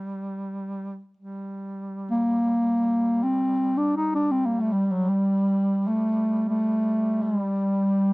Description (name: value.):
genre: caucasian folk, Caucasian lament.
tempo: free time.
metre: none.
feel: none.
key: G minor.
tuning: A4 = 440 Hz.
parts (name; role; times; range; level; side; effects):
mellow duduk; drone; 0.0-8.1 s; G3; -32 LUFS; right 1 dB; stereo widening, cassette tape.
mellow bass clarinet; melody; 2.1-8.1 s; F#3 to Eb4; -21 LUFS; equal; cassette tape.
room: light reverb.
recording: home recording on cassette.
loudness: -22 LUFS.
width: side -25 dB against mid.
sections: 0.0-1.2 A section; 1.2-8.1 A section.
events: none.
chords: none.